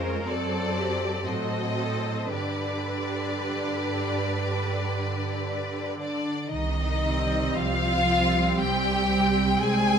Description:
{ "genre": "classical, slow romantic movement for string orchestra", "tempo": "58 BPM", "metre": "4/4", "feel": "rubato", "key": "C minor", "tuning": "A4 = 440 Hz", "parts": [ { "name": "rich studio violin section", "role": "melody", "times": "0.0-10.0 s", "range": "C5 to Ab5", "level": "-29 LUFS", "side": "left 3 dB", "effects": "none" }, { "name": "rich studio violin section", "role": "second line", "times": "0.0-10.0 s", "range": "D4 to C5", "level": "-32 LUFS", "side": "left 1 dB", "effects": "none" }, { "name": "rich studio viola section", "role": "accompaniment", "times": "0.0-10.0 s", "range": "D3 to D4", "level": "-31 LUFS", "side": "right 3 dB", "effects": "none" }, { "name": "clear studio double bass section", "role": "bass", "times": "0.0-10.0 s", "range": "C2 to A2", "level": "-31 LUFS", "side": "right 2 dB", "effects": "none" }, { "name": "warm studio cello section", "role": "bass", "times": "0.0-10.0 s", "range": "D3 to B4", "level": "-31 LUFS", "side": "right 2 dB", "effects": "none" } ], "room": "moderate scoring stage reverb, RT60 1.8 s", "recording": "close, detailed microphones", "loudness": "-24 LUFS", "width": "side -7 dB against mid", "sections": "0.0-6.5 A section; 6.5-10.0 B section", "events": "none", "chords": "0.3 F#dim7; 2.3 G; 6.5 Cm" }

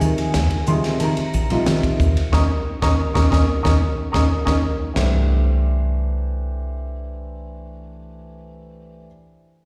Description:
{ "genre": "electric jazz fusion", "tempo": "91 BPM", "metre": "4/4", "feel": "straight", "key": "unclear", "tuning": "A4 = 440 Hz", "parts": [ { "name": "warm baby grand piano", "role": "accompaniment", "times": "0.0-9.1 s", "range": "C3 to Eb6", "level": "-26 LUFS", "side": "equal", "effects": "slapback echo" }, { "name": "woody fretless electric bass", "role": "bass", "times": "0.0-9.1 s", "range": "Bb1 to Eb3", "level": "-22 LUFS", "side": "equal", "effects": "analog chorus" }, { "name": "crisp fusion drum kit", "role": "drums", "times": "0.0-5.1 s", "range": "china cymbal, hi-hat, kick drum, ride cymbal, snare drum, toms", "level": "-27 LUFS", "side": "equal", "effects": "none" } ], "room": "light reverb", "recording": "live gig heard through the venue's PA, recital hall reverb", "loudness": "-20 LUFS", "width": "mono", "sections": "0.0-5.0 A section; 5.0-7.6 B section", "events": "band accent 2.3-5.0; drum fill 4.3-5.0", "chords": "0.0 Eb9sus4; 5.0 C" }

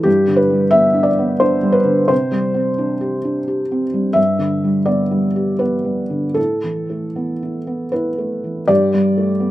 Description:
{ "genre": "neoclassical minimalist piano", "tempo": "76-90 BPM", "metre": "3/4", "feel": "rubato", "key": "G major", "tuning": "A4 = 439 Hz", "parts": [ { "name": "felt-muted upright piano", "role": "solo", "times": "0.0-9.5 s", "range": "G2 to E5", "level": "-15 LUFS", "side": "equal", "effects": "none" } ], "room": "light reverb", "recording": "recorded outdoors, with no room sound", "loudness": "-15 LUFS", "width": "side -15 dB against mid", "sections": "0.0-8.7 A section", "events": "none", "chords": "0.1 G; 2.1 Csus2; 4.2 G; 6.4 Asus2; 8.7 Gadd9" }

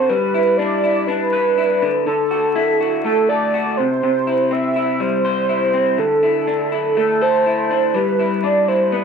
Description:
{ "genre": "indie pop", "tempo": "122 BPM", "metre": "4/4", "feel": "straight", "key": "G major", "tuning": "A4 = 440 Hz", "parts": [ { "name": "warm velvety synth lead", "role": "melody", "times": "0.0-9.0 s", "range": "A4 to E5", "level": "-17 LUFS", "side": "right 2 dB", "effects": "chorus" }, { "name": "electric guitar through a small old amp", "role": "arpeggios", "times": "0.0-9.0 s", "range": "C3 to C5", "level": "-20 LUFS", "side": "left 4 dB", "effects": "lush chorus, analog delay" } ], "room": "moderate small room reverb, RT60 0.5 s", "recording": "dark, warm production, vinyl crackle", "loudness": "-15 LUFS", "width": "side -6 dB against mid", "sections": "0.1-9.0 A section", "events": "none", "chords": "0.1 G6; 1.8 Dadd9; 3.8 C; 6.0 Dsus2; 7.9 G6" }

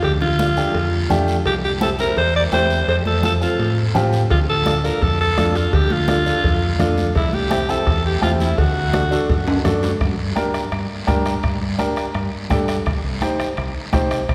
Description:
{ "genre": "latin, cumbia", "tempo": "168 BPM", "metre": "4/4", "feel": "straight", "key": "G minor", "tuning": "A4 = 440 Hz", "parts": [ { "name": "raspy alto saxophone", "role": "melody", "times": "0.0-9.7 s", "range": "E4 to D5", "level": "-24 LUFS", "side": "equal", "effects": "none" }, { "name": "fingered electric bass", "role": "bass", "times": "0.0-14.3 s", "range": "C2 to A2", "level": "-24 LUFS", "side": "equal", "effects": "none" }, { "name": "congas", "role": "percussion", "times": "0.0-14.3 s", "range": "none", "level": "-30 LUFS", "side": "equal", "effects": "none" }, { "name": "cowbell and timbales", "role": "percussion", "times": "0.0-14.3 s", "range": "none", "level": "-33 LUFS", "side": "equal", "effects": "none" }, { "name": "guiro", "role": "percussion", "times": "0.0-14.3 s", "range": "none", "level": "-36 LUFS", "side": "equal", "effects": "none" }, { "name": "clear upright piano", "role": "accompaniment", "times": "0.4-14.2 s", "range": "A3 to C5", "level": "-26 LUFS", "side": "equal", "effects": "none" }, { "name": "bombo", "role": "percussion", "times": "4.3-14.3 s", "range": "none", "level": "-26 LUFS", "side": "equal", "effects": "none" } ], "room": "wet church reverb, RT60 3.4 s", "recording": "recorded in a church or concert hall", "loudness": "-19 LUFS", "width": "mono", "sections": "0.0-10.0 A section; 10.0-14.3 B section", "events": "drum fill 9.5-10.0", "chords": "0.0 Dm; 1.5 C; 2.9 F; 4.3 Dm; 7.2 C; 8.6 D; 10.0 Gm; 12.9 Cm" }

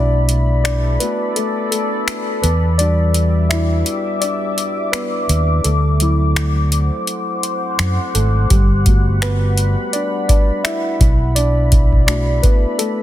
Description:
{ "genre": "contemporary R&B", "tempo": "84 BPM", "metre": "4/4", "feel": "swing 58% on 16ths", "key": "unclear", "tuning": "A4 = 438 Hz", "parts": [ { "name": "muted felt-like synth keys", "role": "accompaniment", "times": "0.0-13.0 s", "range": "F#3 to E5", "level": "-21 LUFS", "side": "left 2 dB", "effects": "chorus" }, { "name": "deep dark ambient pad", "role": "sustained chords", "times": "0.0-13.0 s", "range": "G3 to D6", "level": "-24 LUFS", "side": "left 1 dB", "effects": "chorus, built-in reverb, sidechain pumping" }, { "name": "fingered electric bass", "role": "bass", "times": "0.0-12.4 s", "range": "G1 to F#2", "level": "-15 LUFS", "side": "equal", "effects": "none" }, { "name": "booming analog drum machine", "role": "drums", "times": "0.3-13.0 s", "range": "finger snaps, hi-hat, kick drum", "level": "-16 LUFS", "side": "equal", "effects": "soft clipping on snare" } ], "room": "little or no reverb", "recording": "dense, heavily limited modern master", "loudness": "-14 LUFS", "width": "side -13 dB against mid", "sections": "0.0-13.0 A section", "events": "break 0.0-8.5; synth keys solo 0.0-13.0", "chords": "0.0 Bm7; 2.4 Em7; 5.6 D7; 8.5 Gmaj7; 11.0 Bm7" }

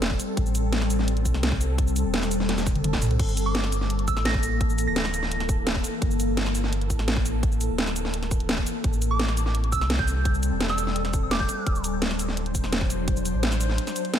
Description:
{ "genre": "liquid drum and bass", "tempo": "170 BPM", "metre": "4/4", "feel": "straight", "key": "G dorian", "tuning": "A4 = 440 Hz", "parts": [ { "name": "glassy FM pad", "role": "sustained chords", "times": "0.0-14.2 s", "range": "E3 to C5", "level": "-29 LUFS", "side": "left 2 dB", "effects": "ensemble chorus, built-in reverb, sidechain pumping" }, { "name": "sub bass with octave", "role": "bass", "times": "0.0-13.8 s", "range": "D1 to C2", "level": "-26 LUFS", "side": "equal", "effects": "none" }, { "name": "garage drum kit", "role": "drums", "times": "0.0-14.2 s", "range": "cabasa, crash cymbal, hi-hat, snare drum, toms", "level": "-28 LUFS", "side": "equal", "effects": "none" }, { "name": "electronic kick drum", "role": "drums", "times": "0.1-13.1 s", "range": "none", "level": "-27 LUFS", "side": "equal", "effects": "none" }, { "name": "soft synth bell", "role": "melody", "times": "3.5-5.2, 9.1-11.7 s", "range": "D6 to Bb6", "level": "-30 LUFS", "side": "right 3 dB", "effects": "chorus, ping-pong delay" } ], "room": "light reverb, digital ambience", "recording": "none", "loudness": "-22 LUFS", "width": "side -10 dB against mid", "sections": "0.0-14.2 A section", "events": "drum fill 2.5-3.2; break 13.8-14.2", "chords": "0.0 Am7; 3.2 Gm69; 8.8 Am7; 11.7 D7" }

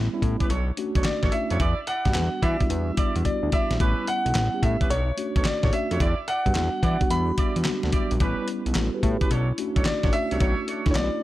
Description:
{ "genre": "R&B, new jack swing", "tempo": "109 BPM", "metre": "4/4", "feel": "swing 66% on 16ths", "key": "E dorian", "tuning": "A4 = 445 Hz", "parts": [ { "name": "mellow tine electric piano", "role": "accompaniment", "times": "0.0-11.2 s", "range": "F#3 to B4", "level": "-29 LUFS", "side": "left 1 dB", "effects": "medium stereo tremolo" }, { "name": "fat analog bass", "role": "bass", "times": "0.0-11.1 s", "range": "A1 to E3", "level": "-25 LUFS", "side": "equal", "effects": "none" }, { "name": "dusty soul sampler-style drum kit", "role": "drums", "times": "0.2-11.1 s", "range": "handclaps, hi-hat, kick drum, snare drum", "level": "-25 LUFS", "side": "equal", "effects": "none" }, { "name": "mellow horn section", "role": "stabs", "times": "0.4-10.9 s", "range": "C#4 to D5", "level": "-33 LUFS", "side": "right 3 dB", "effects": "none" }, { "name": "clear grand piano", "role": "melody", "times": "1.0-11.2 s", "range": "C#5 to B5", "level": "-28 LUFS", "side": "equal", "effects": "none" } ], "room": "little or no reverb", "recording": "none", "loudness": "-21 LUFS", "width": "side -15 dB against mid", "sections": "0.0-11.2 A section", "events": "drum fill 3.3-3.8", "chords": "0.5 Bm9; 1.6 Em7; 3.8 A9; 4.9 Bm9; 6.0 Em7; 8.2 A9; 9.3 Bm9" }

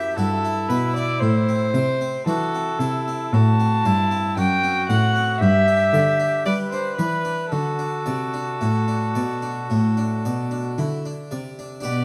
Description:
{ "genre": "classical, baroque-style sonata movement with continuo", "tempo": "56 BPM", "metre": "4/4", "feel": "straight", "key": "unclear", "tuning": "A4 = 440 Hz", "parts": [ { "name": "warm oboe", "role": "melody", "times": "0.0-11.3 s", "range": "E4 to B4", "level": "-32 LUFS", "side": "equal", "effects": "none" }, { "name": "dark violin", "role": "second line", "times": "0.0-12.0 s", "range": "A4 to A5", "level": "-26 LUFS", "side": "equal", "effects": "none" }, { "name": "harpsichord", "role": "accompaniment", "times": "0.0-12.0 s", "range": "F#2 to E5", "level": "-29 LUFS", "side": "equal", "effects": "none" }, { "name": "dark cello", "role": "bass", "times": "0.0-12.0 s", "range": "F#2 to G3", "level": "-25 LUFS", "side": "equal", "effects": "none" } ], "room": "moderate recital hall reverb, RT60 1.6 s", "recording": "none", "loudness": "-21 LUFS", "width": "mono", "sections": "0.0-11.9 A section", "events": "none", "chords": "0.0 Em; 1.2 Am; 3.3 F#dim; 5.4 G; 7.5 D" }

